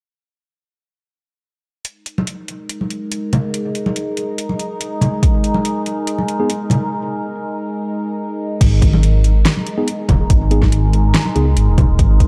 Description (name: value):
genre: deep dubstep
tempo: 142 BPM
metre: 4/4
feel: half-time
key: unclear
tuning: A4 = 440 Hz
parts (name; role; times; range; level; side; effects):
- overtone-sweeping drone; sustained chords; 2.6-12.3 s; G#3 to A#4; -25 LUFS; equal; chorus, built-in reverb
- deep house drum kit; drums; 1.8-12.3 s; crash cymbal, hi-hat, snare drum; -24 LUFS; equal; overdrive
- congas; percussion; 2.2-11.9 s; none; -23 LUFS; equal; dub echo
- electronic kick drum; drums; 5.2-5.3, 8.6-12.3 s; none; -17 LUFS; equal; overdrive
- mellow tine electric piano; stabs; 6.4-6.5, 9.8-11.5 s; B3 to G#4; -25 LUFS; equal; dub echo
- dark detuned saw bass; bass; 8.6-12.3 s; D#1 to C#2; -16 LUFS; equal; none
room: light reverb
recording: dark, warm production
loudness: -17 LUFS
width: mono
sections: 1.8-8.6 A section; 8.6-12.3 B section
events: break 6.9-8.6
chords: 1.8 G#5